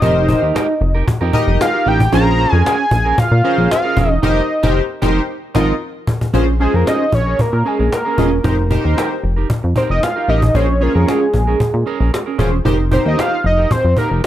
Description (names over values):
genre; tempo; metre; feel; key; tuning
early-eighties boogie funk; 114 BPM; 4/4; straight; Bb dorian; A4 = 441 Hz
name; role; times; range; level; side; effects
fat analog lead; melody; 0.0-14.1 s; Ab4 to Bb5; -17 LUFS; equal; chorus, slapback echo
chorused polysynth; accompaniment; 0.0-13.3 s; Db4 to Eb5; -20 LUFS; left 2 dB; none
clean electric guitar; riff; 0.0-14.3 s; C4 to C5; -23 LUFS; right 7 dB; wide subtle chorus
chorused synth bass; bass; 0.0-14.2 s; E1 to Bb2; -16 LUFS; equal; none
cajon; drums; 0.0-14.3 s; none; -19 LUFS; equal; none
room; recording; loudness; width
digital ambience; none; -13 LUFS; side -12 dB against mid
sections
0.0-6.3 A section; 6.3-14.3 B section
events
band accent 4.2-6.3; drum fill 5.3-6.3; analog synth lead solo 6.3-14.3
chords
0.0 F9sus4; 2.1 Bbm7; 4.2 F9sus4; 5.3 Ab69; 6.3 Bbm7; 8.4 F9sus4; 10.5 Bbm7; 12.7 F9sus4